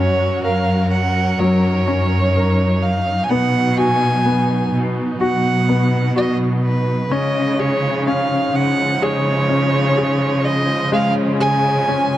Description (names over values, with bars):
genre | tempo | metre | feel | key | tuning
pop | 63 BPM | 4/4 | straight | F# major | A4 = 440 Hz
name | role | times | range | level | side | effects
warm violin | melody | 0.0-12.2 s | B4 to G#5 | -20 LUFS | right 2 dB | none
bright concert grand piano | accompaniment | 0.0-12.2 s | F#3 to A#4 | -22 LUFS | left 2 dB | none
dark studio string section | sustained chords | 0.0-12.2 s | C#3 to A#4 | -24 LUFS | right 2 dB | none
warm symphonic cello section | bass | 0.0-12.2 s | F#2 to C#3 | -19 LUFS | equal | none
room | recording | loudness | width
light reverb, small room ambience | dark, warm production | -15 LUFS | side -13 dB against mid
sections
0.0-12.2 A section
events
none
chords
0.0 F#; 3.3 B; 7.1 C#add9